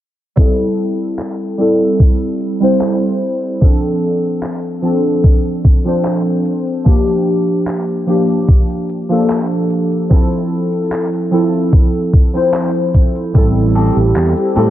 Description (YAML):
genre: vaporwave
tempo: 74 BPM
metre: 4/4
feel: straight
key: unclear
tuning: A4 = 440 Hz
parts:
  - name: warbly lo-fi synth keys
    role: accompaniment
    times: 0.4-14.7 s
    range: F3 to C5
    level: -14 LUFS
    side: equal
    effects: wide subtle chorus, vintage 12-bit sampler grit, tape echo
  - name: electronic kick drum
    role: drums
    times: 0.4-13.5 s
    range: none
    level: -10 LUFS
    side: equal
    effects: none
  - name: gated 80s digital drum machine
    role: drums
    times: 0.4-14.7 s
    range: handclaps, hi-hat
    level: -28 LUFS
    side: equal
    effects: gated reverb, low-pass filter on hats, low-pass filter on snare
  - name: warbly tape-like pad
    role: sustained chords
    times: 14.0-14.7 s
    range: G4 to E6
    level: -18 LUFS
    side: right 1 dB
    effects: chorus, built-in reverb, phaser, vintage 12-bit sampler grit
  - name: fretless electric bass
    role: bass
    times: 13.4-14.7 s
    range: A1 to A2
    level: -13 LUFS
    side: equal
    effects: none
  - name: electric guitar at the edge of break-up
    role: riff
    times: 13.8-14.7 s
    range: C4 to A4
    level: -22 LUFS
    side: left 2 dB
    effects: lush chorus, tape echo
room: light reverb, digital ambience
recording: dry, gritty hardware recording, cassette tape, low-pass filter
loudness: -12 LUFS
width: side -13 dB against mid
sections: 0.4-14.7 A section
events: filter sweep on drum 0.4-14.7; filter sweep 0.4-14.7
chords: 0.4 Am7; 3.6 Dm7; 6.9 Gm7; 10.1 Fmaj7; 13.4 Am7